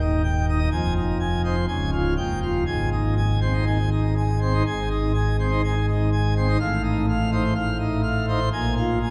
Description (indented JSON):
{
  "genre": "classical, organ toccata",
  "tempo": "124 BPM",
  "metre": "4/4",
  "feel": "straight",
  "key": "Ab major",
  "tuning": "A4 = 440 Hz",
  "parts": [
    { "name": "pipe organ, plenum", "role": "solo", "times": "0.0-9.1 s", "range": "Db1 to Ab5", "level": "-23 LUFS", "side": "equal", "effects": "none" }
  ],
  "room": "wet cathedral reverb, RT60 4.9 s",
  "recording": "heard from further back in the room",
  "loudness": "-23 LUFS",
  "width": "mono",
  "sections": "0.0-4.7 A section; 4.7-9.1 A section",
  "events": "none",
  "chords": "0.0 Eb; 0.7 Fm7; 1.7 Db; 2.2 Ebadd9; 2.7 Ab; 6.6 F7/A; 8.5 Bb7(no3)"
}